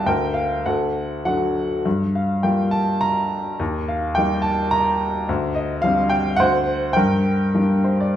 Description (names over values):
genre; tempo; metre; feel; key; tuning
classical, lyrical solo piano; 93-110 BPM; 3/4; rubato; G minor; A4 = 439 Hz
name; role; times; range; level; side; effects
clear upright piano; solo; 0.0-8.2 s; D2 to Bb5; -18 LUFS; equal; none
room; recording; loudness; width
wet recital hall reverb, RT60 1.4 s; recorded in a church or concert hall; -18 LUFS; side -11 dB against mid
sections
0.0-8.2 A section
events
upright piano fill 7.5-8.2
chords
0.1 Gm/D; 0.7 D; 1.9 Gm7; 3.6 Eb; 5.3 D7sus4; 6.4 D7; 7.0 Gm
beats
| 0.06 0.65 1.26 | 1.85 2.44 3.02 | 3.60 4.18 4.74 | 5.28 5.84 6.39 | 6.96 7.54 8.15